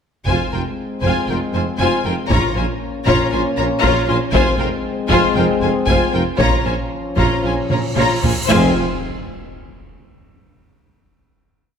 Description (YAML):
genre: cinematic, epic orchestral film score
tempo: 117 BPM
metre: 4/4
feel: straight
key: F minor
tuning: A4 = 440 Hz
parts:
  - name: rich symphonic violin section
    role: melody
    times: 0.3-8.8 s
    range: G5 to Bb5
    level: -24 LUFS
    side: left 4 dB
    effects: none
  - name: warm symphonic violin section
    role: second line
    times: 0.3-8.8 s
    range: Bb4 to Db5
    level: -23 LUFS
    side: left 4 dB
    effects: none
  - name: rich symphonic viola section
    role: accompaniment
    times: 0.3-8.8 s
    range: F4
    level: -22 LUFS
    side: equal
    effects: none
  - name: mellow French horn section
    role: sustained chords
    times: 0.3-8.7 s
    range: F3 to Db4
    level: -23 LUFS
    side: left 3 dB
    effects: none
  - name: mellow tuba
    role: bass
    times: 0.3-8.7 s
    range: F1 to Bb1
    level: -25 LUFS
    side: right 4 dB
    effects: none
  - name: rich chamber double bass section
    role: bass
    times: 0.3-8.8 s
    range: F1 to Bb1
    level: -24 LUFS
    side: right 3 dB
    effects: none
  - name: warm studio cello section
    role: bass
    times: 0.3-8.8 s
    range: F2 to Bb2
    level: -25 LUFS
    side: right 2 dB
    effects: none
  - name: taiko ensemble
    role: drums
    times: 0.3-8.6 s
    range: none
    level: -22 LUFS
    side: equal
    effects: none
  - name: cymbal swell and impact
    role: sound effects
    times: 7.7-10.6 s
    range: none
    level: -28 LUFS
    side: equal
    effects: none
room: moderate scoring stage reverb, RT60 1.9 s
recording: none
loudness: -15 LUFS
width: side -7 dB against mid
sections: 0.3-8.5 theme; 8.5-10.6 final chord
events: cymbal swell 7.7-8.5; drum fill 7.7-8.5; impact 8.5-10.6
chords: 0.3 Fm; 2.3 Bbm; 4.3 Fm; 6.4 Bbm; 8.5 N.C.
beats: | 0.28 0.79 1.30 1.80 | 2.31 2.82 3.33 3.84 | 4.35 4.86 5.37 5.88 | 6.40 6.92 7.45 7.97 | 8.50 9.03 9.57 10.10